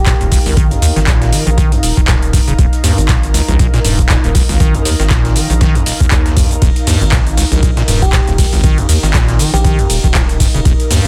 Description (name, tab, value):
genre	acid house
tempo	119 BPM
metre	4/4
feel	swing 57% on 16ths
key	Eb mixolydian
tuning	A4 = 440 Hz
part	soft struck synth lead	melody	0.0-0.7, 8.0-10.2 s	G4	-27 LUFS	equal	chorus, tape echo
part	round analog bass	bass	0.0-11.1 s	Eb1 to Eb2	-18 LUFS	equal	sidechain pumping
part	airy breathy pad	texture	0.0-11.1 s	Eb4 to F5	-26 LUFS	equal	chorus, phaser, sidechain pumping
part	acid bass, square	riff	0.1-11.1 s	Eb1 to Eb3	-19 LUFS	equal	tube saturation, tape echo
part	booming analog drum machine	drums	0.1-11.1 s	handclaps, hi-hat, ride cymbal, shaker	-21 LUFS	equal	none
part	dusty soul sampler-style drum kit	drums	0.1-11.0 s	hi-hat, snare drum	-31 LUFS	equal	none
part	electronic kick drum	drums	0.1-10.8 s	none	-15 LUFS	equal	none
room	digital ambience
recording	dense, heavily limited modern master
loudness	-12 LUFS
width	mono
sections	0.0-11.1 A section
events	none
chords	0.0 Eb5